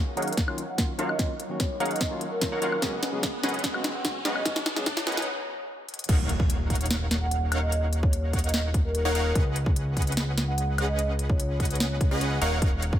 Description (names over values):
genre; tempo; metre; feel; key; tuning
future bass; 147 BPM; 4/4; half-time; Eb minor; A4 = 440 Hz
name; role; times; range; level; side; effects
shimmering ambient pad; sustained chords; 0.1-5.2 s; Gb3 to Db5; -43 LUFS; left 2 dB; none
supersaw stab; riff; 0.0-13.0 s; Db4 to Gb5; -32 LUFS; equal; sidechain pumping, low-pass filter, tape echo
riser and impact; sound effects; 0.1-7.7 s; none; -36 LUFS; equal; none
barky tine electric piano; accompaniment; 0.2-5.2 s; Db3 to Bb4; -35 LUFS; left 1 dB; sidechain pumping, tape echo
trap drum kit; drums; 0.2-12.9 s; crash cymbal, hi-hat, snare drum, woodblock; -30 LUFS; equal; none
electronic kick drum; drums; 0.4-13.0 s; none; -26 LUFS; equal; none
vibraphone with soft mallets; melody; 0.7-12.1 s; Bb4 to Gb5; -34 LUFS; right 1 dB; sidechain pumping, tape echo
fat analog bass; bass; 6.1-13.0 s; Eb1 to Db2; -27 LUFS; equal; sidechain pumping
room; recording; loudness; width
light reverb; high-pass filter; -24 LUFS; side -11 dB against mid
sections
0.0-6.1 A section; 6.1-13.0 B section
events
build-up 0.0-6.1; drum fill 0.0-5.3, 5.9; filter sweep on supersaw synth 0.0-6.1; filter sweep 0.0-6.1; riser 0.1-5.3; break 5.3-6.1; drop 6.1-13.0; impact 6.1-7.7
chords
0.0 Ebm9; 2.8 Db7sus4; 5.9 N.C.; 6.1 Ebm9; 9.4 Db7sus4; 12.4 Ebm9